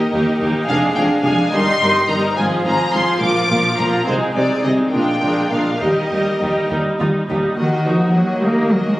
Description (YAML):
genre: quick classical-period movement for string orchestra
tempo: 70 BPM (dotted quarters)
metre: 6/8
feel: straight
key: Eb major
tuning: A4 = 441 Hz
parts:
  - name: rich studio violin section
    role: melody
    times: 0.0-9.0 s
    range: Bb4 to D6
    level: -21 LUFS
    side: left 1 dB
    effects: none
  - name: warm chamber violin section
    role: second line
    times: 0.0-9.0 s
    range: Eb4 to F5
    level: -22 LUFS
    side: equal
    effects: none
  - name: rich chamber viola section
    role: accompaniment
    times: 0.0-9.0 s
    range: F3 to Gb4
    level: -20 LUFS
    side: equal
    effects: none
  - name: clear chamber double bass section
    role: bass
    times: 0.1-9.0 s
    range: F1 to Eb2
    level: -25 LUFS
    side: equal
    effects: none
  - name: warm studio cello section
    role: bass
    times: 0.1-9.0 s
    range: Eb2 to Bb3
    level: -21 LUFS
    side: equal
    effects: none
room: wet scoring stage reverb, RT60 1.6 s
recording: recorded on a phone in the room, club reverb, compression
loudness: -15 LUFS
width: side -16 dB against mid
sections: 0.0-7.6 A section; 7.6-9.0 B section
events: none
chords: 0.0 Eb; 0.7 Ddim; 1.5 Eb/G; 2.4 Fm; 3.2 Bb; 4.1 Ab/C; 4.9 Bb7; 5.8 Eb; 7.6 Ebm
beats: | 0.69 1.53 | 2.38 3.22 | 4.07 4.93 | 5.81 6.70 | 7.58 8.44